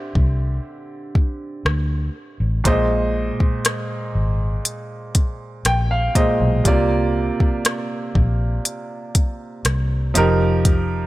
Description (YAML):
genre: contemporary R&B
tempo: 60 BPM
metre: 4/4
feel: straight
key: unclear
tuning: A4 = 440 Hz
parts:
  - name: clear concert grand piano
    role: accompaniment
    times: 0.0-11.1 s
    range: Bb2 to G5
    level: -22 LUFS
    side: right 2 dB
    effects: none
  - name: vintage muted fingered electric bass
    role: bass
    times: 0.2-11.1 s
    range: F1 to D2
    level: -20 LUFS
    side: equal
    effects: none
  - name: smooth R&B drum kit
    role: drums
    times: 0.2-10.9 s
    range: hi-hat, kick drum, rim click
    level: -18 LUFS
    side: equal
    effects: none
room: little or no reverb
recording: none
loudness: -18 LUFS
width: side -17 dB against mid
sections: 0.0-11.1 A section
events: grand piano fill 5.2-6.7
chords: 0.0 D9sus4; 2.7 Bb9sus4; 6.7 C9sus4; 10.2 F9sus4